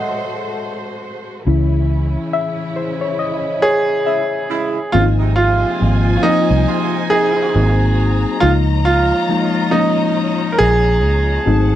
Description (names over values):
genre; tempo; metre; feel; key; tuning
R&B, neo-soul; 69 BPM; 4/4; swing 58% on 16ths; unclear; A4 = 440 Hz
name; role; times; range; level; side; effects
reed electric piano; accompaniment; 0.0-11.8 s; Fb3 to Gb5; -20 LUFS; left 5 dB; phaser
warm studio string section; sustained chords; 0.0-11.8 s; Db3 to Bb5; -25 LUFS; equal; none
vintage muted fingered electric bass; bass; 1.5-11.8 s; Ab1 to Db2; -15 LUFS; right 1 dB; none
clear grand piano; melody; 3.6-11.8 s; Eb4 to Bb4; -17 LUFS; right 2 dB; slapback echo
mellow horn section; stabs; 4.1-7.8 s; C3 to F4; -23 LUFS; right 6 dB; none
room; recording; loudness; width
light reverb; dry, close 1970s-style studio recording; -14 LUFS; side -12 dB against mid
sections
0.0-4.9 A section; 4.9-11.8 B section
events
reed electric piano solo 0.0-4.9; band accent 1.5-4.9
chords
0.0 Ab7b9; 1.5 Dbm; 4.9 Ab6; 7.5 Ab9; 8.4 Db69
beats
0.58 | 1.45 2.32 3.19 4.06 | 4.93 5.80 6.67 7.54 | 8.41 9.28 10.15 11.02